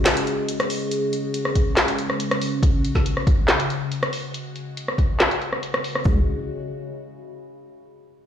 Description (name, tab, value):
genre	deep dubstep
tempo	140 BPM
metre	4/4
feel	half-time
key	unclear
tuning	A4 = 439 Hz
part	overtone-sweeping drone	sustained chords	0.0-6.3 s	C#3 to F#4	-27 LUFS	left 1 dB	chorus, built-in reverb
part	deep house drum kit	drums	0.1-6.0 s	handclaps, hi-hat, rim click, snare drum	-22 LUFS	equal	low-pass filter on hats, low-pass filter on snare, low-pass filter on room
part	electronic kick drum	drums	1.6-6.1 s	none	-20 LUFS	equal	none
part	deep soft wobble bass	bass	6.1-6.3 s	C#2	-21 LUFS	equal	chorus
room	moderate echo chamber reverb, RT60 1.4 s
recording	played on a big sound system in a bare room, large studio reverb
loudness	-20 LUFS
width	side -9 dB against mid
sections	0.0-6.1 A section; 6.1-7.8 B section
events	filter sweep on synth drone 0.0-6.1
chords	0.0 C#5; 6.1 C#m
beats	0.06 0.48 | 0.91 1.34 1.77 2.20 | 2.63 3.06 3.48 3.91 | 4.34 4.77 5.20 5.63 | 6.06